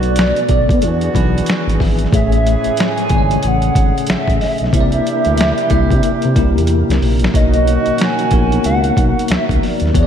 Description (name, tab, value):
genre	R&B, neo-soul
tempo	92 BPM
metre	4/4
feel	swing 61% on 16ths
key	unclear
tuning	A4 = 440 Hz
part	hollow square lead	melody	0.0-10.1 s	D5 to G#5	-19 LUFS	right 1 dB	chorus, diffuse ambient delay
part	bell-like tine electric piano	accompaniment	0.0-10.1 s	A2 to B5	-19 LUFS	left 2 dB	fast stereo tremolo
part	tonewheel organ	sustained chords	0.0-10.1 s	C3 to Bb4	-26 LUFS	left 1 dB	fast rotary speaker
part	clear horn section	stabs	0.0-10.1 s	D3 to G#4	-25 LUFS	right 5 dB	diffuse ambient delay
part	smooth gliding synth bass	bass	0.0-10.1 s	G#1 to C3	-16 LUFS	equal	none
part	boom bap sampler-style drum kit	drums	0.0-10.1 s	hi-hat, kick drum, snare drum	-17 LUFS	equal	none
room	moderate lush hall reverb, RT60 1.8 s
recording	dreamy mix soaked in reverb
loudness	-12 LUFS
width	side -8 dB against mid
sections	0.0-10.1 A section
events	tine electric piano fill 0.8-2.1; drum fill 6.7-7.3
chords	0.0 Bm7; 0.8 E7; 2.1 Amaj7; 4.7 C9; 7.3 Bmaj9